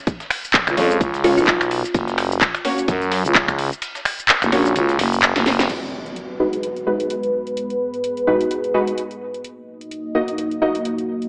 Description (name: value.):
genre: bass house.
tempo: 128 BPM.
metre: 4/4.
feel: swing 56% on 16ths.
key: G# dorian.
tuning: A4 = 440 Hz.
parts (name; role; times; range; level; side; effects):
dusty soul sampler-style drum kit; drums; 0.1-5.7 s; ride cymbal, snare drum; -32 LUFS; equal; none.
electronic kick drum; drums; 0.1-3.6 s; none; -25 LUFS; equal; none.
house drum kit; drums; 0.1-11.3 s; crash cymbal, finger snaps, handclaps, hi-hat, shaker, snare drum; -22 LUFS; equal; none.
growling FM bass; bass; 0.7-5.7 s; F#1 to F#2; -22 LUFS; equal; overdrive, sidechain pumping.
orchestra-hit-like synth stab; stabs; 0.8-10.8 s; G#3 to D#5; -24 LUFS; equal; built-in reverb, sidechain pumping, digital delay.
buzzing kalimba; melody; 1.2-1.4 s; E#4; -25 LUFS; equal; digital delay.
dark analog pad; sustained chords; 6.3-11.3 s; G#3 to D#5; -26 LUFS; equal; chorus, phaser, sidechain pumping.
impact; sound effects; 5.7-7.6 s; none; -37 LUFS; equal; none.
room: moderate plate reverb, RT60 1.7 s.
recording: AM radio sound.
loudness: -20 LUFS.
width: mono.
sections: 0.0-5.7 A section; 5.7-11.3 B section.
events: kick drops out 3.8-5.7; drum fill 5.3-5.7; band accent 5.6; impact 5.7-7.6; filter sweep on synth stab 5.7-11.3.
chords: 0.0 C#; 1.9 F#; 5.7 G#m7; 9.4 D#m.